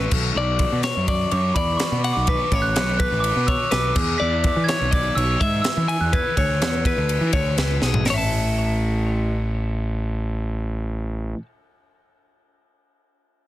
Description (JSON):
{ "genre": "math rock and midwest emo", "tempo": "124 BPM", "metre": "4/4", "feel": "straight", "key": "A major", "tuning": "A4 = 440 Hz", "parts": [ { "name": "glockenspiel with rubber mallets", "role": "melody", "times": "0.0-11.3 s", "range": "B5 to C#7", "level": "-26 LUFS", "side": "right 4 dB", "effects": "none" }, { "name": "clean electric guitar", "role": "arpeggios", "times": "0.0-11.5 s", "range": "G#4 to A5", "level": "-26 LUFS", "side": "left 5 dB", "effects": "digital delay" }, { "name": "fuzz picked electric bass", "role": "bass", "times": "0.0-11.3 s", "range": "A1 to E3", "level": "-23 LUFS", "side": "equal", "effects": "overdrive" }, { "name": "crisp fusion drum kit", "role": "drums", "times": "0.1-8.2 s", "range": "crash cymbal, hi-hat, kick drum, ride cymbal, snare drum, toms", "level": "-24 LUFS", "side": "equal", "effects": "none" } ], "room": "little or no reverb", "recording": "dense, heavily limited modern master", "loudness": "-19 LUFS", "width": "side -14 dB against mid", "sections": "0.0-8.1 A section; 8.1-11.9 B section", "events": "drum fill 7.8", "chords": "0.1 Bm7; 4.0 E7; 8.1 A" }